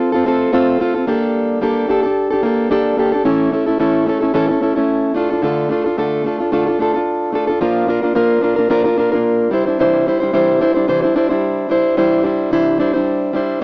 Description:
pop; 110 BPM; 4/4; swing 55% on 16ths; A4 = 440 Hz
fingerpicked plugged-in steel-string acoustic guitar; solo; 0.0-13.6 s; A2 to C5; -13 LUFS; equal; cassette tape
moderate booth ambience, RT60 0.2 s; home recording on cassette, small speaker sound; -13 LUFS; side -30 dB against mid
0.0-3.2 A section; 3.2-12.0 B section; 12.0-13.6 C section
0.0 F; 1.1 Gmadd9; 3.2 A; 5.2 Dm; 7.6 Bb; 9.5 Cadd9

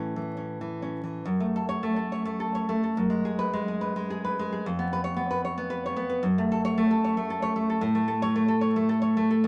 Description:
romantic piece for solo classical guitar; 89-115 BPM; 3/4; rubato; F# minor; A4 = 441 Hz
nylon-string guitar; solo; 0.0-9.5 s; E#2 to C#5; -27 LUFS; equal
wet studio reverb, RT60 0.5 s; vinyl crackle; -27 LUFS; mono
0.0-1.3 A section; 1.3-9.5 B section
0.0 A; 1.3 F#m; 3.0 F#sus24; 4.6 C#7/E#; 6.2 F#m; 7.8 A

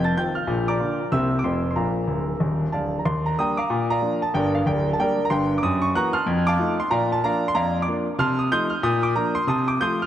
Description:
jazz, stride piano; 186 BPM; 4/4; swing 61% on 8ths; Bb major; A4 = 437 Hz
clear concert grand piano; solo; 0.0-10.1 s; D1 to A6; -20 LUFS; equal; analog delay
wet plate reverb, RT60 3.7 s; dreamy mix soaked in reverb, cassette tape; -20 LUFS; side -11 dB against mid
0.0-3.1 A section; 3.1-10.1 B section
grand piano fill 2.1-3.1
0.5 Bb; 1.1 C7; 1.4 F; 1.8 Bb; 3.1 Ebmaj7; 3.7 Bb; 4.3 Gm; 5.6 Gb7; 6.3 F7; 6.9 Bb; 8.2 F7/C; 8.8 Bb; 9.5 F7/C

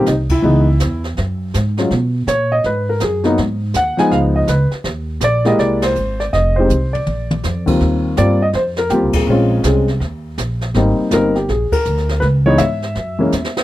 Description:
jazz piano trio; 163 BPM; 4/4; swing 64% on 8ths; Eb major; A4 = 441 Hz
warm baby grand piano; melody; 0.0-13.5 s; Eb2 to Ab5; -15 LUFS; left 1 dB
upright bass; bass; 0.0-13.6 s; F1 to B2; -18 LUFS; right 1 dB
jazz brush drum kit; drums; 0.1-13.6 s; brushed snare drum, crash cymbal, hi-hat, kick drum, ride cymbal, snare drum, toms; -23 LUFS; right 1 dB
little or no reverb; dry, close 1970s-style studio recording; -14 LUFS; side -15 dB against mid
0.0-7.8 A section; 7.8-13.6 A section
band accent 0.2, 5.8, 9.1, 11.7; drum fill 6.7-7.4, 13.3-13.6
0.4 Dbm7; 1.2 Gbsus2; 1.9 B5; 3.4 Ab5; 4.1 Db9; 4.9 Eb5; 5.6 C7b13; 6.3 F7(no3); 7.1 Eb69; 9.3 Bbm9; 10.0 Eb5; 10.8 Abmaj9; 12.2 Dbm; 13.0 Gb7(no3)

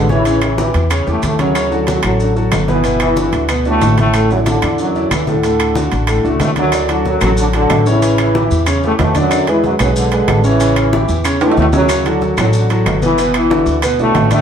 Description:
latin, salsa; 186 BPM; 4/4; straight; D major; A4 = 440 Hz
clear trombone section; melody; 0.0-14.4 s; F#2 to E4; -17 LUFS; equal
clear grand piano; accompaniment; 0.0-14.4 s; A2 to D5; -17 LUFS; equal
upright bass; bass; 0.0-14.4 s; G1 to E2; -18 LUFS; equal
congas; percussion; 0.1-14.4 s; -21 LUFS; equal
maracas; percussion; 0.1-14.4 s; -31 LUFS; left 2 dB
timbales; percussion; 0.3-14.4 s; -22 LUFS; right 3 dB
claves; percussion; 0.4-14.0 s; -28 LUFS; left 5 dB
wet studio reverb, RT60 0.8 s; heard from further back in the room, faint mains hum; -11 LUFS; side -8 dB against mid
0.0-6.7 A section; 6.7-14.4 A section
drum fill 11.4-11.9
0.3 A7; 1.6 Dmaj9; 2.8 Gmaj9; 4.1 Asus4; 5.4 D; 8.0 A6; 9.3 E7; 10.6 A7; 11.9 Dmaj9; 13.2 Gmaj9

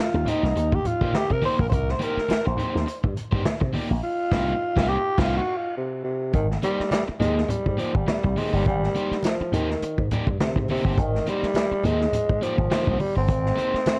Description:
funk; 104 BPM; 4/4; swing 56% on 16ths; A4 = 441 Hz
growling tenor saxophone; melody; 0.0-14.0 s; C3 to C5; -28 LUFS; equal
crunchy overdriven guitar; accompaniment; 0.0-13.8 s; Bb3 to D5; -34 LUFS; equal
slap bass with an envelope filter; bass; 0.1-13.8 s; G1 to C3; -28 LUFS; equal
vintage drum kit; drums; 0.3-14.0 s; crash cymbal, hi-hat, kick drum, snare drum; -29 LUFS; equal
congas; percussion; 0.3-14.0 s; -34 LUFS; equal
light reverb, studio ambience; cassette tape; -24 LUFS; mono
0.0-6.3 A section; 6.3-14.0 B section
tenor saxophone solo 0.0-6.3; band accent 4.0-6.3
0.0 Cm7; 6.3 Abmaj9

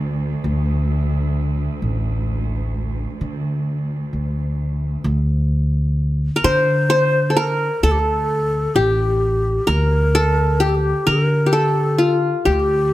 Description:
arabic; 130 BPM (eighths); 10/8; straight; D maqam bayati; A4 = 438 Hz
qanun; melody; 0.0-12.9 s; F4 to D5; -18 LUFS; left 1 dB
upright bass; bass; 0.0-12.9 s; A1 to D3; -19 LUFS; equal
clear studio cello section; drone; 0.0-5.2 s; D2; -29 LUFS; right 2 dB
breathy bright low ney; second line; 6.4-12.9 s; F4 to C5; -23 LUFS; left 1 dB
light reverb; close, detailed microphones; -16 LUFS; side -15 dB against mid
0.0-5.1 A section; 5.1-12.9 B section

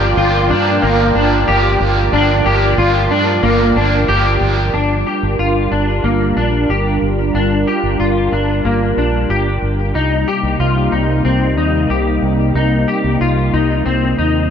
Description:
dream pop; 92 BPM; 4/4; straight; A4 = 440 Hz
crunchy overdriven guitar; accompaniment; 0.0-4.7 s; G2 to G4; -20 LUFS; right 4 dB; harmonic tremolo, wide subtle chorus
warm analog pad; sustained chords; 0.0-14.5 s; C3 to G5; -18 LUFS; right 1 dB; chorus
clean electric guitar; arpeggios; 0.0-14.5 s; Bb3 to G4; -16 LUFS; left 2 dB; ensemble chorus, ping-pong delay
fingered electric bass; bass; 0.0-14.5 s; G1 to G2; -18 LUFS; equal
moderate plate reverb, RT60 3.8 s; -12 LUFS; side -8 dB against mid
0.0-4.7 A section; 4.7-14.5 B section
0.0 Gm7; 10.0 Cm7

